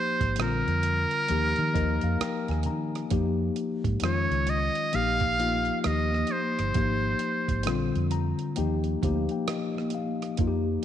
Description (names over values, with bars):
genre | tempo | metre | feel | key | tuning
R&B, neo-soul | 66 BPM | 4/4 | swing 62% on 16ths | unclear | A4 = 440 Hz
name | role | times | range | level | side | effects
trumpet with metal mute | melody | 0.0-8.1 s | Bb4 to F5 | -28 LUFS | right 1 dB | slapback echo
tine electric piano | accompaniment | 0.0-10.8 s | D3 to Bb5 | -29 LUFS | left 6 dB | medium stereo tremolo
vintage muted fingered electric bass | bass | 0.2-10.8 s | G1 to Eb3 | -29 LUFS | right 1 dB | transformer saturation
dusty soul sampler-style drum kit | drums | 0.2-10.8 s | hi-hat, kick drum, rim click | -32 LUFS | right 5 dB | none
congas | percussion | 3.1-10.6 s | none | -41 LUFS | right 12 dB | none
room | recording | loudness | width
moderate echo chamber reverb, RT60 2.2 s | 1960s-style stereo with parts hard left and right | -24 LUFS | side -10 dB against mid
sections
0.0-10.8 A section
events
tine electric piano fill 1.3-3.1, 7.7-10.4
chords
0.4 Bb69; 1.3 Eb; 3.1 Fm9; 4.0 Dbadd9; 4.9 Bbsus4; 5.8 Ebadd9; 6.7 Abmaj9; 7.7 Bb69; 8.6 Ebmaj7